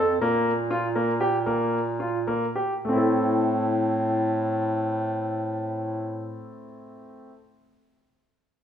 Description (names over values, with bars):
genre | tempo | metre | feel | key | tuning
contemporary instrumental, chamber music in an uneven meter | 101-126 BPM | 5/4 | straight | A phrygian | A4 = 438 Hz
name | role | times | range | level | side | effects
bright concert grand piano | arpeggios | 0.0-7.3 s | A3 to A4 | -26 LUFS | equal | none
clear bass clarinet | bass | 0.0-6.6 s | F2 to Bb2 | -26 LUFS | equal | none
room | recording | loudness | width
moderate recital hall reverb, RT60 1.7 s | minimal, uncompressed stereo recording | -23 LUFS | side -8 dB against mid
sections
0.0-2.8 A section; 2.8-5.8 B section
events
slowing down 0.0-2.8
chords
0.2 Bb5; 2.8 Am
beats
| 0.21 0.70 1.20 1.73 2.27 | 2.85 3.44 4.03 4.62 5.21